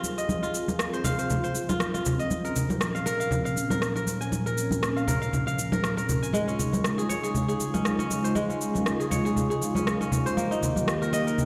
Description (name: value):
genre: afro house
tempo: 119 BPM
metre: 4/4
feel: swing 56% on 16ths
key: unclear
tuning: A4 = 440 Hz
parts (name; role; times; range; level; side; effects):
- warm analog pad; sustained chords; 0.0-11.5 s; Bb2 to Ab4; -32 LUFS; equal; chorus
- kora; arpeggios; 0.0-11.5 s; Ab3 to Ab5; -32 LUFS; equal; delay
- electronic shaker and rim click; drums; 0.0-11.5 s; none; -35 LUFS; equal; studio reverb
- congas; percussion; 0.0-11.5 s; none; -32 LUFS; equal; none
room: moderate lush hall reverb, RT60 1.8 s, studio ambience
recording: played on a big sound system in a bare room, large studio reverb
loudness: -27 LUFS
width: mono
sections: 0.0-11.5 A section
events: none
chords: 0.0 Fm7; 2.3 Bbm7; 6.3 Db; 10.4 Eb